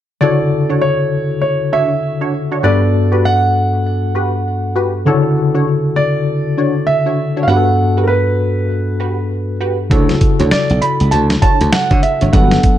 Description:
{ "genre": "R&B, new jack swing", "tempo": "99 BPM", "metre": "4/4", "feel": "swing 60% on 16ths", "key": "D major", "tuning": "A4 = 438 Hz", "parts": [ { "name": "warm concert grand piano", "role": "melody", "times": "0.2-12.8 s", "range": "Bb4 to B5", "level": "-18 LUFS", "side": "right 2 dB", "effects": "none" }, { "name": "tine electric piano", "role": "accompaniment", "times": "0.2-12.8 s", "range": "G2 to A4", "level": "-16 LUFS", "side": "left 1 dB", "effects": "medium stereo tremolo" }, { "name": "funky polysynth comp", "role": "stabs", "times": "0.2-12.5 s", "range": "D4 to C#5", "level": "-21 LUFS", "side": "equal", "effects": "chorus" }, { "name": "slap bass", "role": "bass", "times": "9.9-12.6 s", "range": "G1 to D3", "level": "-15 LUFS", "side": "equal", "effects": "none" }, { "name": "dusty soul sampler-style drum kit", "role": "drums", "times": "9.9-12.8 s", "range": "hi-hat, kick drum, snare drum", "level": "-14 LUFS", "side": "equal", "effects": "vintage 12-bit sampler grit" } ], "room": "light reverb, digital ambience", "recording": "dark, warm production", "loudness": "-12 LUFS", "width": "side -11 dB against mid", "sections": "0.2-12.8 A section", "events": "none", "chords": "0.2 Dmaj7; 2.6 Gmaj7; 5.1 Dmaj7; 7.5 Gmaj7; 9.9 Dmaj7" }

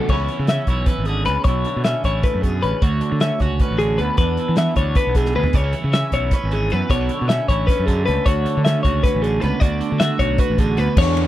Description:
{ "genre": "math rock and midwest emo", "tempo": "309 BPM (eighths)", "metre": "7/8", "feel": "straight", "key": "unclear", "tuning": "A4 = 440 Hz", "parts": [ { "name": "twelve-string electric guitar", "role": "accompaniment", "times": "0.0-11.3 s", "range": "D2 to F#4", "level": "-24 LUFS", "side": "right 7 dB", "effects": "none" }, { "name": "twelve-string electric guitar", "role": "arpeggios", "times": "0.0-11.3 s", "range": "G#4 to E5", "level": "-22 LUFS", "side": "left 4 dB", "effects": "none" }, { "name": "crunchy overdriven guitar", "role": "riff", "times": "0.0-0.1, 11.0-11.3 s", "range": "E3 to G#4", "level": "-23 LUFS", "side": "equal", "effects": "none" }, { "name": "fuzz fingered electric bass", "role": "bass", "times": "0.1-11.3 s", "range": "G#1 to E3", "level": "-21 LUFS", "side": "equal", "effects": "overdrive" }, { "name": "loose indie drum kit", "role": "drums", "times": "0.1-11.3 s", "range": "crash cymbal, hi-hat, kick drum, ride cymbal, snare drum, toms", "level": "-19 LUFS", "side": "equal", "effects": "none" } ], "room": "little or no reverb", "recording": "dry, close 1970s-style studio recording", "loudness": "-16 LUFS", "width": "side -14 dB against mid", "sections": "0.1-11.0 A section", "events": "drum fill 5.3", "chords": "0.1 C#m7; 1.5 Bm11; 4.2 E7; 5.6 C#m7; 6.9 Bm11" }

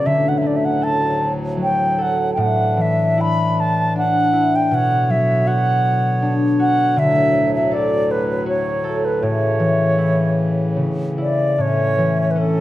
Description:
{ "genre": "celtic folk, Celtic slow air", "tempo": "78 BPM", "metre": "3/4", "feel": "uneven beats, rubato", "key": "A major", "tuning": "A4 = 440 Hz", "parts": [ { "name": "bright reedy baroque flute", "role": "melody", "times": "0.0-12.6 s", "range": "A4 to B5", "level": "-19 LUFS", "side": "equal", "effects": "none" }, { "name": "concert harp", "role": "accompaniment", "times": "0.0-12.6 s", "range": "A2 to A4", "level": "-19 LUFS", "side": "equal", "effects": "none" }, { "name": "pedal harmonium", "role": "sustained chords", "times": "0.0-12.6 s", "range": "D2 to C#5", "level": "-26 LUFS", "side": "equal", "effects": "none" } ], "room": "moderate recital hall reverb, RT60 1.5 s", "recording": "dark, warm production", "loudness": "-15 LUFS", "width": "side -14 dB against mid", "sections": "0.0-11.6 A section; 11.6-12.6 A section", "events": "none", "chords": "0.1 D; 2.4 Asus4; 4.7 Bmadd9; 7.0 D; 9.2 A" }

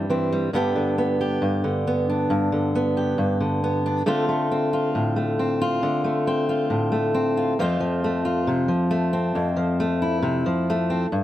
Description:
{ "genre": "folk, solo fingerstyle acoustic guitar", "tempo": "68 BPM", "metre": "4/4", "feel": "straight", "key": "unclear", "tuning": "A4 = 441 Hz", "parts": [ { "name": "fingerpicked steel-string acoustic guitar", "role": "solo", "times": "0.0-11.2 s", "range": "F2 to G4", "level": "-20 LUFS", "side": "equal", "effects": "none" } ], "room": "moderate studio reverb, RT60 0.7 s", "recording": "none", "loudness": "-20 LUFS", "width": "side -13 dB against mid", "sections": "0.5-11.2 A section", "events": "none", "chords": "0.0 C; 0.5 G; 4.1 Dm7; 7.6 F" }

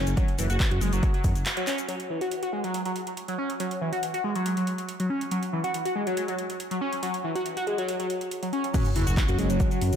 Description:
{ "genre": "driving peak-time techno", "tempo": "140 BPM", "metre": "4/4", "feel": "straight", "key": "unclear", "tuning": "A4 = 438 Hz", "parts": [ { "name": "overdriven synth lead", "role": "riff", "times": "0.0-9.8 s", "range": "E3 to F#4", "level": "-28 LUFS", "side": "equal", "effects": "phaser, cassette tape, sidechain pumping, diffuse ambient delay" }, { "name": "dark detuned saw bass", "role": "bass", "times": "0.0-1.4, 9.0-10.0 s", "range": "F#1 to F#2", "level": "-26 LUFS", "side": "equal", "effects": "sidechain pumping" }, { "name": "techno drum kit", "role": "drums", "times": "0.1-10.0 s", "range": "crash cymbal, handclaps, hi-hat, shaker", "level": "-35 LUFS", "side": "right 1 dB", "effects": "sidechain pumping on hats, studio reverb, sidechain pumping on perc, sidechain pumping on cymbals" }, { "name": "electronic kick drum", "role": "drums", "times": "0.2-1.3, 8.7-9.7 s", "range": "none", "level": "-25 LUFS", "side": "equal", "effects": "studio reverb" }, { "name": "analog drone", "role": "drone", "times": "9.0-10.0 s", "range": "F#3 to C#4", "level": "-33 LUFS", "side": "left 3 dB", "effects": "chorus, sidechain pumping" }, { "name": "sub drop", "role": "sound effects", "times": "8.7-10.0 s", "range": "none", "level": "-32 LUFS", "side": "equal", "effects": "none" } ], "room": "moderate plate reverb, RT60 2.3 s", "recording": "dreamy mix soaked in reverb", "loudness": "-25 LUFS", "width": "side -8 dB against mid", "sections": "0.0-1.9 A section; 1.9-8.7 B section; 8.7-10.0 A section", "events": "drop 0.0-1.9, 8.7-10.0; break 1.5-1.9; band accent 1.5; impact 8.7-10.0", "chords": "0.0 N.C.; 1.9 F#5" }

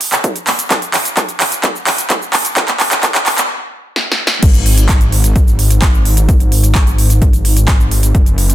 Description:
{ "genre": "EDM, festival progressive house", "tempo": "129 BPM", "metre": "4/4", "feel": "straight", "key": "unclear", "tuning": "A4 = 440 Hz", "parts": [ { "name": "big-room dance drum kit", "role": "drums", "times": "0.0-8.5 s", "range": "crash cymbal, handclaps, hi-hat, shaker, snare drum", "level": "-14 LUFS", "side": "right 1 dB", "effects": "none" }, { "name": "electronic kick drum", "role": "drums", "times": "0.2-8.2 s", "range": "none", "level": "-12 LUFS", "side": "equal", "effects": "high-pass filter on kick, high-pass filter on room" }, { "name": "wide detuned saw bass", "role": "bass", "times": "4.4-8.5 s", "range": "Gb1 to Ab1", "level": "-12 LUFS", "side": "equal", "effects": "chorus, sidechain pumping" } ], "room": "light reverb", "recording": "dense, heavily limited modern master, high-pass filter", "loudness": "-10 LUFS", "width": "side -13 dB against mid", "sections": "0.0-4.4 A section; 4.4-8.5 B section", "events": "build-up 0.0-4.4; drum fill 0.0-3.5, 4.0-4.4; stop 3.5-4.4; drop 4.4-8.5", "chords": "none" }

